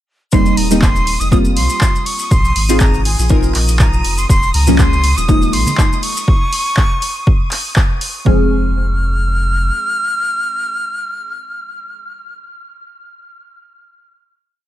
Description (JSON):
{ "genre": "deep house", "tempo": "121 BPM", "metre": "4/4", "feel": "swing 54% on 16ths", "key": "F minor", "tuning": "A4 = 440 Hz", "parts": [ { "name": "breathy bright jazz flute", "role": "melody", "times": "0.3-12.4 s", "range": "Ab5 to F6", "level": "-21 LUFS", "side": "equal", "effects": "dub echo" }, { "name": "deep mellow chord stab", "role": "stabs", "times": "0.3-12.4 s", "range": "F3 to Bb4", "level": "-18 LUFS", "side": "equal", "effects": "chorus, sidechain pumping, digital delay" }, { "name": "warm sub bass", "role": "bass", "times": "0.3-9.7 s", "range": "Eb1 to Db2", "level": "-16 LUFS", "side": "equal", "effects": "sidechain pumping" }, { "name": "electronic kick drum", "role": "drums", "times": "0.3-8.4 s", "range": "none", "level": "-13 LUFS", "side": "equal", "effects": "none" }, { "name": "maracas", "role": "percussion", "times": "0.3-6.3 s", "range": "none", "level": "-26 LUFS", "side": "left 2 dB", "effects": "none" }, { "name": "string machine, violins", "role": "texture", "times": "0.3-8.3 s", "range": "Eb6", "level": "-28 LUFS", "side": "right 1 dB", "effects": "ensemble chorus, sidechain pumping" }, { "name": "punchy analog drum machine", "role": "drums", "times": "0.6-8.1 s", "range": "handclaps, hi-hat", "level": "-20 LUFS", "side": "equal", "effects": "none" }, { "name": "congas", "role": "percussion", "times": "4.7-5.8 s", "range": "none", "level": "-22 LUFS", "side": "right 2 dB", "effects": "none" } ], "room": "small room ambience", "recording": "lossy compression artefacts", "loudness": "-12 LUFS", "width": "side -13 dB against mid", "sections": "0.3-8.3 drop; 8.3-12.2 final chord", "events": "drop 0.3-8.3", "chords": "0.3 F9sus4; 2.3 Bb9sus4; 4.3 Eb9sus4; 6.3 N.C.; 8.3 Fm" }